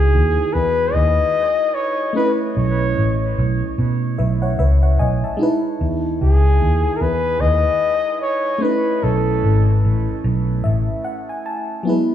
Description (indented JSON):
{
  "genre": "lovers rock reggae",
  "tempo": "74 BPM",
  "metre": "4/4",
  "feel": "swing 60% on 16ths",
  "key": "unclear",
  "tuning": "A4 = 438 Hz",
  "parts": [
    { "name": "breathy flugelhorn", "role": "melody", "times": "0.0-9.8 s", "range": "G#4 to D#5", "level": "-20 LUFS", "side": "left 2 dB", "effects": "dub echo" },
    { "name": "FM electric piano with tremolo", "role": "accompaniment", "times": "0.0-12.1 s", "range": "F#3 to A5", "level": "-23 LUFS", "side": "right 1 dB", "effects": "none" },
    { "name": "vintage muted fingered electric bass", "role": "bass", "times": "0.0-10.9 s", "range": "G#1 to B2", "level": "-17 LUFS", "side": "equal", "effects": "none" }
  ],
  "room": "light reverb",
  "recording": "band playing live in one room, studio reverb",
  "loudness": "-16 LUFS",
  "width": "side -10 dB against mid",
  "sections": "0.0-12.1 A section",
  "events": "FM electric piano fill 10.2-11.9",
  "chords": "0.0 Emaj7; 2.2 B9sus4; 5.4 Emaj7; 8.6 B9sus4"
}